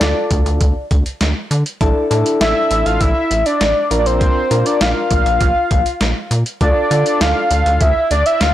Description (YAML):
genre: synth-pop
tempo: 100 BPM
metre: 4/4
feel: straight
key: D minor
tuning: A4 = 440 Hz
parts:
  - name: fat analog lead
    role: melody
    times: 0.0-8.5 s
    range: C5 to F5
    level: -16 LUFS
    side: equal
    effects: chorus, phaser, slapback echo
  - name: soft electric-piano-like synth keys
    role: accompaniment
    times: 0.0-7.9 s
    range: D4 to Bb4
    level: -20 LUFS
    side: left 1 dB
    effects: chorus
  - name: rubbery square bass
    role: bass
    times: 0.0-8.5 s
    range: A1 to D3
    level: -18 LUFS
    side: equal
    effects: none
  - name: boom bap sampler-style drum kit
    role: drums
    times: 0.0-8.5 s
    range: hi-hat, kick drum, snare drum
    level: -18 LUFS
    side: equal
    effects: none
room: light reverb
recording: blown-out, overdriven recording, overdrive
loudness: -13 LUFS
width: side -12 dB against mid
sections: 0.0-8.5 A section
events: none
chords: 0.0 Dm; 1.8 Asus4; 3.9 Bb; 6.6 Dm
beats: 0.01 0.61 1.21 | 1.81 2.41 3.01 3.61 | 4.21 4.81 5.41 6.01 | 6.61 7.21 7.81 8.41